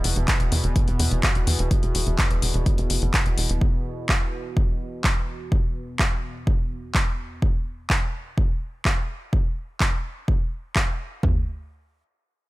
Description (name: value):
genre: melodic techno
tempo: 126 BPM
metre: 4/4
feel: straight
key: unclear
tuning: A4 = 440 Hz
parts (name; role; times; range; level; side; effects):
- tight sequencer bass; bass; 0.0-3.6 s; E1 to E2; -23 LUFS; equal; sidechain pumping
- analog drone; drone; 0.0-7.5 s; E2 to B2; -32 LUFS; equal; chorus, sidechain pumping
- punchy analog drum machine; drums; 0.0-10.9 s; handclaps, hi-hat; -26 LUFS; equal; none
- punchy analog drum machine; drums; 0.3-11.3 s; kick drum, toms; -22 LUFS; equal; none
room: little or no reverb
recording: none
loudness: -21 LUFS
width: side -19 dB against mid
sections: 0.0-11.2 A section; 11.2-12.5 B section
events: filter sweep on analog synth bass 0.0-3.6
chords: 0.0 E5; 11.2 N.C.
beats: 0.28 0.76 1.23 | 1.71 2.19 2.66 3.14 | 3.61 4.09 4.57 5.04 | 5.52 6.00 6.47 6.95 | 7.42 7.90 8.38 8.85 | 9.33 9.80 10.28 10.76 | 11.23